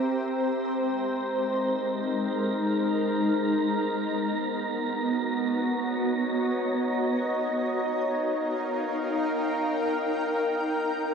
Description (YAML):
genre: ambient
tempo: free time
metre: none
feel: none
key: Ab major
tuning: A4 = 440 Hz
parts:
  - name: shimmering ambient pad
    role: sustained chords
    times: 0.0-11.1 s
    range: Ab3 to G5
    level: -25 LUFS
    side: equal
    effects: chorus, built-in reverb
  - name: wind-like tuned noise texture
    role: texture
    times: 0.0-11.1 s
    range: Bb5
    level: -35 LUFS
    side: right 4 dB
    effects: built-in reverb
room: wet huge ambient reverb, RT60 7.8 s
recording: dark, warm production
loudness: -25 LUFS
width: side -6 dB against mid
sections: 0.0-11.1 A section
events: none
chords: 0.1 Abmaj7; 3.6 Bmaj9; 7.1 Eb7; 10.5 C7(no3)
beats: free time